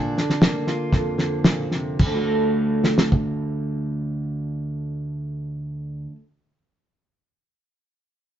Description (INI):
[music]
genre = indie folk with a building arrangement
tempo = 107-124 BPM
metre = 4/4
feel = straight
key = unclear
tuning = A4 = 440 Hz
[part]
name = fingerpicked steel-string acoustic guitar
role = accompaniment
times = 0.0-6.2 s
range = D2 to F#4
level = -24 LUFS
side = right 1 dB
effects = none
[part]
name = cloth-damped thuddy drum kit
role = drums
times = 0.2-3.3 s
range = crash cymbal, kick drum, snare drum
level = -20 LUFS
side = equal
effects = none
[sound]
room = moderate studio reverb, RT60 0.7 s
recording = rough rehearsal-room recording, nothing above 7.6 kHz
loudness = -21 LUFS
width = side -10 dB against mid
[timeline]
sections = 0.0-2.0 A section; 2.0-6.5 B section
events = slowing down 0.0-2.0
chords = 0.0 Bb; 2.0 D